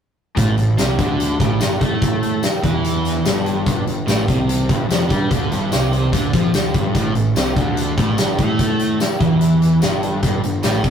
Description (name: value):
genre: classic rock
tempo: 146 BPM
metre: 4/4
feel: straight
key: A minor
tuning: A4 = 436 Hz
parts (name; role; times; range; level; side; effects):
- crunchy overdriven guitar; riff; 0.4-10.9 s; F2 to A3; -19 LUFS; equal; spring reverb
- fuzz picked electric bass; bass; 0.4-10.9 s; F1 to A2; -24 LUFS; equal; overdrive
- big rock drum kit; drums; 0.4-10.9 s; hi-hat, kick drum, snare drum, tambourine; -19 LUFS; equal; none
room: wet small room ambience, RT60 0.5 s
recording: rough rehearsal-room recording, tube saturation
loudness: -15 LUFS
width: side -8 dB against mid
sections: 0.4-10.9 A section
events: none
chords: 0.4 A5; 3.7 G5; 6.9 A5; 10.2 G5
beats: | 0.37 0.79 1.20 1.61 | 2.02 2.43 2.84 3.25 | 3.66 4.07 4.48 4.89 | 5.31 5.72 6.13 6.54 | 6.95 7.36 7.77 8.18 | 8.59 9.00 9.41 9.82 | 10.22 10.63